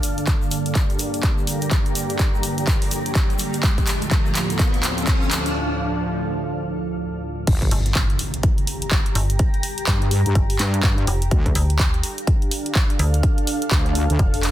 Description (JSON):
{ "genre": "bass house", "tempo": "125 BPM", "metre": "4/4", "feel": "swing 61% on 16ths", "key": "G minor", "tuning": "A4 = 440 Hz", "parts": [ { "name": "sweeping resonant pad", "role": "sustained chords", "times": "0.0-7.4 s", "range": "D2 to Bb3", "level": "-27 LUFS", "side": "right 2 dB", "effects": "chorus, sidechain pumping" }, { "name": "big-room dance drum kit", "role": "drums", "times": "0.0-14.5 s", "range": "crash cymbal, handclaps, hi-hat", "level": "-26 LUFS", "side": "equal", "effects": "high-pass filter on snare, studio ambience, high-pass filter on hats, high-pass filter on cymbals" }, { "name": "egg shaker", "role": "percussion", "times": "0.0-5.5 s", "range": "none", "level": "-33 LUFS", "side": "left 3 dB", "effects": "none" }, { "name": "riser and impact", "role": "sound effects", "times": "2.0-9.4 s", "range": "none", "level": "-30 LUFS", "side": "equal", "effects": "none" }, { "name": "granular cloud pad", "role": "texture", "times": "0.0-14.5 s", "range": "D4 to Bb5", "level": "-28 LUFS", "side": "equal", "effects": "built-in reverb, sidechain pumping" }, { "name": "electronic kick drum", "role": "drums", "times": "0.3-14.3 s", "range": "none", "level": "-20 LUFS", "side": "equal", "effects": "studio ambience" }, { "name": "wobble bass", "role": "bass", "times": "7.5-14.2 s", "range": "G1 to G2", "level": "-20 LUFS", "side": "equal", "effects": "chorus, tube saturation, sidechain pumping" }, { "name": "metallic FM bass", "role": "bass", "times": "7.7-14.5 s", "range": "F1 to D2", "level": "-20 LUFS", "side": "equal", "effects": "tube saturation, sidechain pumping" } ], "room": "little or no reverb", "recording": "dense, heavily limited modern master", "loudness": "-18 LUFS", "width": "side -13 dB against mid", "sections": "0.0-7.5 A section; 7.5-14.5 B section", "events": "build-up 0.0-7.5; drum fill 0.0-5.6; riser 2.0-5.6; break 5.6-7.5; drop 7.5-14.5; impact 7.5-9.4", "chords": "0.0 Gm; 3.6 Dm; 7.5 Gm; 11.3 Dm" }